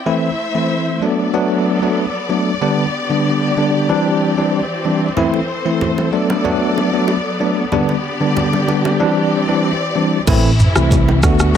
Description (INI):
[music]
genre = afrobeats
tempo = 94 BPM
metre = 4/4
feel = straight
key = unclear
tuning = A4 = 440 Hz
[part]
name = warm studio string section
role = sustained chords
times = 0.0-11.6 s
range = C3 to E5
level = -21 LUFS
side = left 2 dB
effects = none
[part]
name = barky tine electric piano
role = accompaniment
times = 0.1-11.6 s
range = D3 to F#4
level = -16 LUFS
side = equal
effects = medium stereo tremolo
[part]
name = congas and bongos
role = percussion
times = 5.2-11.4 s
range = none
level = -24 LUFS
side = right 3 dB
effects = none
[part]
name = mellow fretless electric bass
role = bass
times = 10.3-11.6 s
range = A1 to D2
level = -15 LUFS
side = right 1 dB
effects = ensemble chorus
[part]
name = afro-pop drum kit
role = drums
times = 10.3-11.6 s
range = crash cymbal, kick drum, rim click, shaker, toms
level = -15 LUFS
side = equal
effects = none
[sound]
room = light reverb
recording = none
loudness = -14 LUFS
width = side -8 dB against mid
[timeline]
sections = 0.1-10.3 A section; 10.3-11.6 B section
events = none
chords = 0.1 Am; 1.0 D6; 2.6 G; 3.9 Cadd9; 5.2 Am; 6.1 D6; 7.7 G; 9.0 Cadd9; 10.3 Am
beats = | 0.06 0.70 1.34 1.98 | 2.62 3.25 3.89 4.53 | 5.17 5.81 6.45 7.08 | 7.72 8.36 9.00 9.64 | 10.28 10.91 11.55